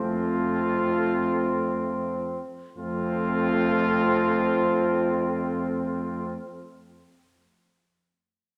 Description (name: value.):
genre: classical, brass quintet.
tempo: free time.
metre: none.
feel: none.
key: F major.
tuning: A4 = 440 Hz.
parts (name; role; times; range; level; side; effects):
clear trumpet; melody; 0.0-6.3 s; F4; -33 LUFS; equal; none.
clear flugelhorn; second line; 0.0-6.3 s; C4; -32 LUFS; equal; none.
brilliant trombone; accompaniment; 0.0-6.3 s; F3; -34 LUFS; equal; none.
mellow French horn; accompaniment; 0.0-6.3 s; A3; -32 LUFS; equal; none.
warm bass trombone; bass; 0.0-6.3 s; F2; -34 LUFS; equal; none.
room: wet recital hall reverb, RT60 1.8 s.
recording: none.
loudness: -25 LUFS.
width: mono.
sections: 0.0-2.8 A section; 2.8-5.6 B section.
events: slowing down 0.0-2.8.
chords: 0.0 F.